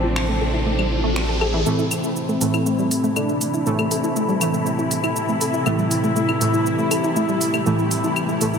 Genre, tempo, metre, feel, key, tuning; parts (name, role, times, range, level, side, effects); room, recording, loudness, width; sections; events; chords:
melodic techno; 120 BPM; 4/4; straight; A minor; A4 = 440 Hz
dark symphonic string section; sustained chords; 0.0-8.6 s; C3 to E4; -25 LUFS; left 2 dB; low-pass filter
wide unison pluck; arpeggios; 0.0-8.6 s; E3 to A4; -25 LUFS; equal; ping-pong delay
round analog bass; bass; 0.0-1.6 s; A1; -23 LUFS; equal
overtone-sweeping drone; drone; 0.0-8.6 s; A2 to A4; -32 LUFS; equal; chorus, built-in reverb
riser; sound effects; 0.0-1.7 s; -28 LUFS; left 1 dB
house drum kit; drums; 0.2-8.6 s; claves, finger snaps, hi-hat, shaker; -28 LUFS; equal; small room ambience
wide unison lead; melody; 1.7-7.8 s; C4 to E4; -26 LUFS; left 1 dB; ping-pong delay
synth brass stab; stabs; 1.7-8.6 s; A2 to A3; -24 LUFS; right 2 dB; chorus, ping-pong delay
wet huge ambient reverb, RT60 4.6 s; dreamy mix soaked in reverb; -18 LUFS; side -6 dB against mid
0.0-1.7 A section; 1.7-8.6 B section
riser 0.0-1.7; build-up 1.7-8.6; filter sweep on synth arpeggio sound 1.7-8.6; filter sweep on string section 1.7-8.6
0.0 Fmaj13/A; 1.7 Am